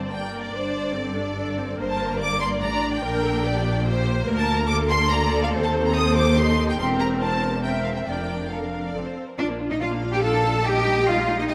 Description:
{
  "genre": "quick classical-period movement for string orchestra",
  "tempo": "143 BPM",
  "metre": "3/4",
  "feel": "straight",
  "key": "G minor, Bb major from 4.3 s",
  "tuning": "A4 = 440 Hz",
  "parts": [
    { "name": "rich symphonic violin section", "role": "second line", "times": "0.0-11.5 s", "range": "G4 to A5", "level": "-31 LUFS", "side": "equal", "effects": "none" },
    { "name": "rich symphonic viola section", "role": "accompaniment", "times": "0.0-11.5 s", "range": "G3 to D5", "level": "-30 LUFS", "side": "equal", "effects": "none" },
    { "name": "clear symphonic double bass section", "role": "bass", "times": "0.0-11.5 s", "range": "E1 to Eb2", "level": "-30 LUFS", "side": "equal", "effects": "none" },
    { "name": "rich symphonic cello section", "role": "bass", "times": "0.0-11.5 s", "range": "D2 to A4", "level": "-29 LUFS", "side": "equal", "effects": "none" },
    { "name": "warm symphonic violin section", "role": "melody", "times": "0.1-11.5 s", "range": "D5 to Eb6", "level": "-30 LUFS", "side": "equal", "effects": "none" }
  ],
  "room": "moderate scoring stage reverb, RT60 1.8 s",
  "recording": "none",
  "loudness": "-23 LUFS",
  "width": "mono",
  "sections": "0.0-9.4 A section; 9.4-11.5 B section",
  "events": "none",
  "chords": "0.0 Gm; 0.5 D5/G; 1.8 Gm; 3.0 Gm/Bb; 4.3 Bb/D; 5.5 Cm/Eb; 6.8 C7/E; 8.1 Bb/F; 8.9 F; 9.4 Bb; 10.7 Eb/Bb"
}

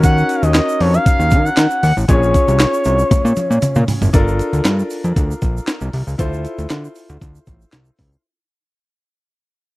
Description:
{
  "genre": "early-eighties boogie funk",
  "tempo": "117 BPM",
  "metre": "4/4",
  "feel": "straight",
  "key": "unclear",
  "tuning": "A4 = 439 Hz",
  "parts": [
    { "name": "expressive portamento lead", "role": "melody", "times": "0.0-3.8 s", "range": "Db5 to Gb5", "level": "-18 LUFS", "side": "equal", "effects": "chorus, slapback echo" },
    { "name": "clear grand piano", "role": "accompaniment", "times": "0.0-8.2 s", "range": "Db4 to Db5", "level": "-22 LUFS", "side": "left 2 dB", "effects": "none" },
    { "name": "fat analog bass", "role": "bass", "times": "0.0-8.2 s", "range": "F#1 to Eb3", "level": "-16 LUFS", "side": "equal", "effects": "none" },
    { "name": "breakbeat sampler-style drum kit", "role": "drums", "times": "0.0-8.1 s", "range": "handclaps, hi-hat, kick drum, snare drum, toms", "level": "-16 LUFS", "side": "equal", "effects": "none" },
    { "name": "egg shaker", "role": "percussion", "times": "0.0-8.2 s", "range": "none", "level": "-37 LUFS", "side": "right 9 dB", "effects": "none" }
  ],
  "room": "digital ambience",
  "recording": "dry, close 1970s-style studio recording",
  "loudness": "-13 LUFS",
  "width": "side -19 dB against mid",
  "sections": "0.0-4.1 A section; 4.1-8.2 B section",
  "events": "drum fill 3.1-4.1; fade-out 4.1-8.2",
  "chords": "0.0 Ebm9; 2.1 Bbm9; 4.1 Gm9; 6.2 Dm9"
}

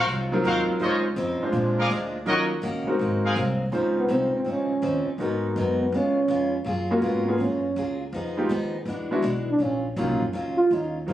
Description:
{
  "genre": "jazz, big band swing",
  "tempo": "164 BPM",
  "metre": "4/4",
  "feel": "swing 66% on 8ths",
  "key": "Db major",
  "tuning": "A4 = 440 Hz",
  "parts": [
    { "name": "brilliant trumpet section", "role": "stabs", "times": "0.0-3.3 s", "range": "F4 to F5", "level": "-26 LUFS", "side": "left 1 dB", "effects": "none" },
    { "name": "upright bass", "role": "bass", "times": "0.0-11.1 s", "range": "Gb1 to Bb2", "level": "-31 LUFS", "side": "equal", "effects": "none" },
    { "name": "picked old ladder-braced acoustic guitar", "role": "accompaniment", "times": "0.1-11.1 s", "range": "Ab2 to Ab4", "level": "-30 LUFS", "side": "left 1 dB", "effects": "none" },
    { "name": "clear concert grand piano", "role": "accompaniment", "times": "0.3-11.1 s", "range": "Gb3 to C5", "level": "-26 LUFS", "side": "equal", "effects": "none" },
    { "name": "dark trombone", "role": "melody", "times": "4.0-11.0 s", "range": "Ab3 to F4", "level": "-24 LUFS", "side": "right 1 dB", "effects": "plate reverb" }
  ],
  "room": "moderate large studio reverb, RT60 1.0 s",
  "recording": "recorded on a phone in the room, studio ambience, compression",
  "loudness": "-22 LUFS",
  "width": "side -12 dB against mid",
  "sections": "0.0-3.7 A section; 3.7-11.1 B section",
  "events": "trombone solo 3.7-11.1",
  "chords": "0.0 Ab13; 0.8 Dbmaj9; 1.5 Bb7; 2.3 Ebm7; 3.0 Ab9; 3.7 Dbmaj9; 5.2 Abm7; 5.9 Db7; 6.7 Gbmaj9; 8.1 Fm7b5; 8.9 E9; 9.6 Ebm9"
}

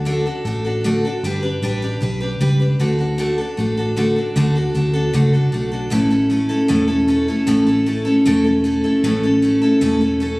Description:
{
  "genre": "country",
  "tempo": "154 BPM",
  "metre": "4/4",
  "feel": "straight",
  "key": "D major",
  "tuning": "A4 = 440 Hz",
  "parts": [
    { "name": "picked steel-string acoustic guitar", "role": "accompaniment", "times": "0.0-10.4 s", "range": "A2 to B4", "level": "-16 LUFS", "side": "equal", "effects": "none" },
    { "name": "vintage muted fingered electric bass", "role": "bass", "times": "0.0-10.4 s", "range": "E1 to D2", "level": "-21 LUFS", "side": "equal", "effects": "none" }
  ],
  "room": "light reverb",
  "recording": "recorded on a phone in the room, studio reverb",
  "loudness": "-15 LUFS",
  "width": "side -22 dB against mid",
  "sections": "0.0-4.4 A section; 4.4-10.4 B section",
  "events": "none",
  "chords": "0.0 D; 1.2 G; 2.8 D; 5.9 A"
}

